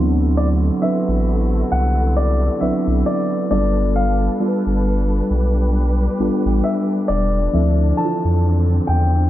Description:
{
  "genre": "contemporary R&B",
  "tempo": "67 BPM",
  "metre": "4/4",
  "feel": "swing 58% on 16ths",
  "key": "unclear",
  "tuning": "A4 = 440 Hz",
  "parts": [
    { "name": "muted felt-like synth keys", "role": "accompaniment", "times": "0.0-9.3 s", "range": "E3 to C6", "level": "-20 LUFS", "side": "right 1 dB", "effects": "chorus" },
    { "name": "warm studio string section", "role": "sustained chords", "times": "0.0-9.3 s", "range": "C3 to B4", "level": "-27 LUFS", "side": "equal", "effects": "none" },
    { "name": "warm sub bass", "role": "bass", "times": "0.0-9.3 s", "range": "E1 to F2", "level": "-18 LUFS", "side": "equal", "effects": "none" },
    { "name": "clear baby grand piano", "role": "melody", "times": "0.4-9.3 s", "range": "D5 to A5", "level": "-24 LUFS", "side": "left 3 dB", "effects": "ping-pong delay" },
    { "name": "small celesta", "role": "texture", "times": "7.5-9.3 s", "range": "E5", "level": "-37 LUFS", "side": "left 7 dB", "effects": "none" }
  ],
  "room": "studio reverb",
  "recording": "dark, warm production, low-pass filter",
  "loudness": "-16 LUFS",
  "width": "side -14 dB against mid",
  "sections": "0.0-9.3 A section",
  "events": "synth keys fill 0.0-0.4; filter sweep 0.0-9.3",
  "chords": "0.0 D13; 3.5 G9; 7.5 Dm9",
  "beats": "| 0.37 1.27 2.17 3.06 | 3.96 4.85 5.75 6.64 | 7.54 8.43"
}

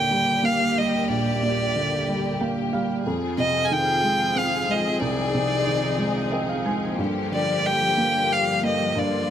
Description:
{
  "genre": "six-eight pop ballad",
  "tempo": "61 BPM (dotted quarters)",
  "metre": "6/8",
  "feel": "straight",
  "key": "unclear",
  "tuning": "A4 = 440 Hz",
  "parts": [
    { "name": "rich violin", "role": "melody", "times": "0.0-9.3 s", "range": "D5 to Ab5", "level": "-23 LUFS", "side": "equal", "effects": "none" },
    { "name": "felt-muted upright piano", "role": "accompaniment", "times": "0.0-9.3 s", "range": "Bb1 to Ab5", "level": "-26 LUFS", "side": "right 2 dB", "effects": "none" },
    { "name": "warm studio string section", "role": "sustained chords", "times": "0.0-9.3 s", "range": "G2 to Ab4", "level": "-27 LUFS", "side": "left 2 dB", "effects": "none" }
  ],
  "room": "light reverb, small room reverb",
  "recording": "none",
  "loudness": "-20 LUFS",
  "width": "side -9 dB against mid",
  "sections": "0.0-9.3 A section",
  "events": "felt piano fill 2.1-3.0, 6.0-7.0",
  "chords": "0.0 Ebmaj7; 3.0 Fm7; 7.0 Gm7",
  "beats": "0.11 | 1.09 2.07 | 3.05 4.03 | 5.01 6.00 | 6.99 7.98 | 8.96"
}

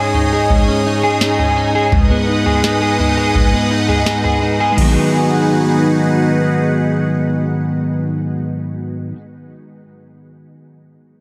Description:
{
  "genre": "dream pop",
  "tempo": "84 BPM",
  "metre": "4/4",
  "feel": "straight",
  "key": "G# minor",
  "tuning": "A4 = 438 Hz",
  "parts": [
    { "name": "phased analog pad", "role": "sustained chords", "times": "0.0-8.4 s", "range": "G#3 to D#6", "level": "-22 LUFS", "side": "equal", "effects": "phaser, chorus" },
    { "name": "electric guitar at the edge of break-up", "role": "arpeggios", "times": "0.0-9.2 s", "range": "G#2 to G#4", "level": "-18 LUFS", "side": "equal", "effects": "ensemble chorus, tape echo" },
    { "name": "booming analog drum machine", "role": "drums", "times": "0.1-5.0 s", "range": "crash cymbal, kick drum, snare drum, toms", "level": "-20 LUFS", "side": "equal", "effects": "none" }
  ],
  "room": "moderate huge ambient reverb, RT60 6.8 s",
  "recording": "none",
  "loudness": "-15 LUFS",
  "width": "mono",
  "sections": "0.0-4.8 A section; 4.8-7.6 B section",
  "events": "none",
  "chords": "0.0 C#sus2/G#; 1.9 G#m7",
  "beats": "0.50 1.21 | 1.92 2.64 3.35 4.07 | 4.78 5.50 6.21 6.92"
}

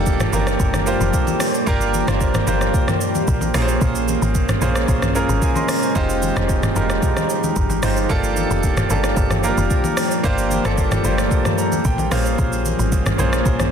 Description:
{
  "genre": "amapiano",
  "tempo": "112 BPM",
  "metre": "4/4",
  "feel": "straight",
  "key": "G phrygian",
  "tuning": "A4 = 440 Hz",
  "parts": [
    { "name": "clear concert grand piano", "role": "accompaniment", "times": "0.0-13.7 s", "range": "G3 to C6", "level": "-22 LUFS", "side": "right 4 dB", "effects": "none" },
    { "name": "deep dark ambient pad", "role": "sustained chords", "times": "0.0-13.7 s", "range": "Db3 to G4", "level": "-24 LUFS", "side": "left 2 dB", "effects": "chorus, built-in reverb, sidechain pumping" },
    { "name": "woody log drum bass", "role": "bass", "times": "0.0-13.7 s", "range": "F1 to Bb1", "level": "-22 LUFS", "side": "equal", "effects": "none" },
    { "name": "smooth R&B drum kit", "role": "drums", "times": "0.1-13.7 s", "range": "hi-hat, kick drum, rim click, shaker, toms", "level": "-21 LUFS", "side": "equal", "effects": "soft clipping on snare" },
    { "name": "congas", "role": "percussion", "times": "0.2-13.7 s", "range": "none", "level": "-29 LUFS", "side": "left 5 dB", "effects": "none" }
  ],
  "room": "light reverb, digital ambience",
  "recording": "dense, heavily limited modern master",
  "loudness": "-16 LUFS",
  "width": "side -7 dB against mid",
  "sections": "0.0-13.7 A section",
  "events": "grand piano fill 11.3-12.4",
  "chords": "0.0 Gm9; 3.5 Bbm9; 6.0 Fm9; 8.1 Gm9; 12.1 Bbm9",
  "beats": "0.06 0.60 1.14 | 1.67 2.21 2.74 3.28 | 3.81 4.35 4.89 5.42 | 5.96 6.49 7.03 7.56 | 8.10 8.64 9.17 9.71 | 10.24 10.78 11.31 11.85 | 12.39 12.92 13.46"
}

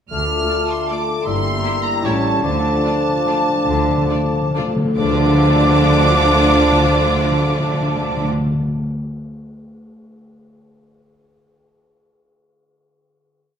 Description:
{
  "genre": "classical, orchestral ballroom waltz",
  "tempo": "131-170 BPM",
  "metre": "3/4",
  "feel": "rubato",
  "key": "D minor",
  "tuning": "A4 = 440 Hz",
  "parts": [
    { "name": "clear symphonic violin section", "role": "melody", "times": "0.1-8.3 s", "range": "A5 to F6", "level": "-25 LUFS", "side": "left 1 dB", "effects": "none" },
    { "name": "mellow clarinet", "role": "second line", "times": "0.1-8.3 s", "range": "D4 to F4", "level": "-26 LUFS", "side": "right 3 dB", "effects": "none" },
    { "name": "mellow hollow flute section", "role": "second line", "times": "0.1-8.3 s", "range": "A5 to Bb5", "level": "-25 LUFS", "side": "right 4 dB", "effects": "none" },
    { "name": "warm cor anglais", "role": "second line", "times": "0.1-8.3 s", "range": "C#5 to E5", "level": "-26 LUFS", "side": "left 1 dB", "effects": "none" },
    { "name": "mellow bassoon", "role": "accompaniment", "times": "0.1-8.3 s", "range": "F3 to A3", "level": "-24 LUFS", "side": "equal", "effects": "none" },
    { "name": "dark French horn section", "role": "sustained chords", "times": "0.1-8.3 s", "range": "F3 to F4", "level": "-25 LUFS", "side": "left 4 dB", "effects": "none" },
    { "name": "concert harp", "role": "arpeggios", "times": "0.1-9.1 s", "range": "G2 to A5", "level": "-25 LUFS", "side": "left 8 dB", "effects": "none" },
    { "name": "rich symphonic cello section", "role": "bass", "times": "0.1-8.3 s", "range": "D2 to D3", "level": "-23 LUFS", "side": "right 2 dB", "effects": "none" },
    { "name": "rich symphonic double bass section", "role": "bass", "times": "0.1-8.3 s", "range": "G1 to D2", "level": "-24 LUFS", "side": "right 2 dB", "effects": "none" },
    { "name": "timpani", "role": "percussion", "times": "0.1-8.9 s", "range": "D3", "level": "-24 LUFS", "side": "left 1 dB", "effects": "none" },
    { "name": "clear symphonic violin section", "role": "second line", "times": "0.5-8.3 s", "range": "F4 to E5", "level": "-27 LUFS", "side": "left 3 dB", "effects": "none" },
    { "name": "rich symphonic viola section", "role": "accompaniment", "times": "0.5-8.3 s", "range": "A3 to F4", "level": "-26 LUFS", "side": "right 2 dB", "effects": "none" },
    { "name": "cymbal swell and tam-tam", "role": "percussion", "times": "2.4-6.6 s", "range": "none", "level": "-30 LUFS", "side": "left 2 dB", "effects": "none" }
  ],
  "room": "wet recital hall reverb, RT60 1.4 s",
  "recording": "none",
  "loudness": "-14 LUFS",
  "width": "side -8 dB against mid",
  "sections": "0.1-5.0 A section; 5.0-7.5 final chord",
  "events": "slowing down 1.8-5.0; timpani fill 2.4-5.0; band accent 5.0-5.4",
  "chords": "0.1 Dm; 1.3 Edim/G; 2.0 A7; 2.4 Dm",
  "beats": "| 0.12 0.50 0.90 | 1.27 1.65 2.05 | 2.44 2.85 3.27 | 3.68 4.10 4.55 | 4.98 5.40 5.85 | 6.26 6.68 7.12"
}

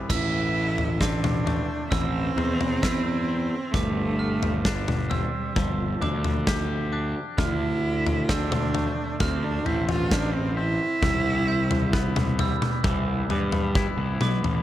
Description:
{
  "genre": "post-rock",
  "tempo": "66 BPM",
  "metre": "4/4",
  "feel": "straight",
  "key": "A minor",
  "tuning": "A4 = 443 Hz",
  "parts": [
    { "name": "glockenspiel with hard plastic mallets", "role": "arpeggios", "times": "0.0-14.6 s", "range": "D6 to G6", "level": "-35 LUFS", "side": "right 8 dB", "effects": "analog delay" },
    { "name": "twangy electric guitar", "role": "arpeggios", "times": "0.0-14.6 s", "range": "G2 to G4", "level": "-34 LUFS", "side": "left 5 dB", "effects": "analog delay" },
    { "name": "fuzz picked electric bass", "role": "bass", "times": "0.0-14.6 s", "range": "G1 to G2", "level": "-27 LUFS", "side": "equal", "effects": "overdrive" },
    { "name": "clear cello", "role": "melody", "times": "0.1-12.4 s", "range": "G3 to F4", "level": "-28 LUFS", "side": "right 2 dB", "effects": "analog delay" },
    { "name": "big rock drum kit", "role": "drums", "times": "0.1-14.6 s", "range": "crash cymbal, kick drum, snare drum, toms", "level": "-27 LUFS", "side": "left 1 dB", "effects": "none" }
  ],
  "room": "studio reverb",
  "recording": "none",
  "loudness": "-22 LUFS",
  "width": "side -13 dB against mid",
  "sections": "0.1-14.6 A section",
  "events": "none",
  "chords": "0.1 Am; 3.7 G7sus4; 7.4 Dm7; 11.0 Cmaj7",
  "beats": "| 0.10 1.01 1.92 2.83 | 3.74 4.65 5.56 6.47 | 7.38 8.29 9.20 10.11 | 11.03 11.94 12.85 13.76"
}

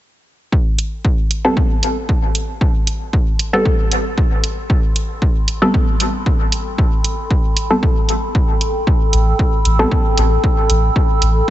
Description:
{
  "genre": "dub techno",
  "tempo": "115 BPM",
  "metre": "4/4",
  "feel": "swing 53% on 16ths",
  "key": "A minor",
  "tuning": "A4 = 440 Hz",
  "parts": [
    { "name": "warbly tape-like pad", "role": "sustained chords", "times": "0.5-11.5 s", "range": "A4 to E6", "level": "-23 LUFS", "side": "right 1 dB", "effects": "chorus, built-in reverb, sidechain pumping" },
    { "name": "electronic kick drum", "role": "drums", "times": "0.5-11.5 s", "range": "none", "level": "-16 LUFS", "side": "equal", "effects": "none" },
    { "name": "electronic hi-hat", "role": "drums", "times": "0.8-11.3 s", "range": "none", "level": "-20 LUFS", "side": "right 3 dB", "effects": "none" },
    { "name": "filtered dub chord stab", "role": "stabs", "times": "1.4-11.5 s", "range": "G3 to A4", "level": "-20 LUFS", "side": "equal", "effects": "chorus, phaser, sidechain pumping, dub echo" },
    { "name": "soft dub sub bass", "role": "bass", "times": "9.1-11.4 s", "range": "A1", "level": "-14 LUFS", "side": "equal", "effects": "sidechain pumping" }
  ],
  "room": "digital ambience",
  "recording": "nothing above 8.0 kHz",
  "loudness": "-14 LUFS",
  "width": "side -14 dB against mid",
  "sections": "0.5-11.5 A section",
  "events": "none",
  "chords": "0.5 Am9",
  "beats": "| 0.52 1.04 1.57 2.09 | 2.61 3.13 3.65 4.18 | 4.70 5.22 5.74 6.26 | 6.78 7.31 7.83 8.35 | 8.87 9.39 9.91 10.44 | 10.96 11.48"
}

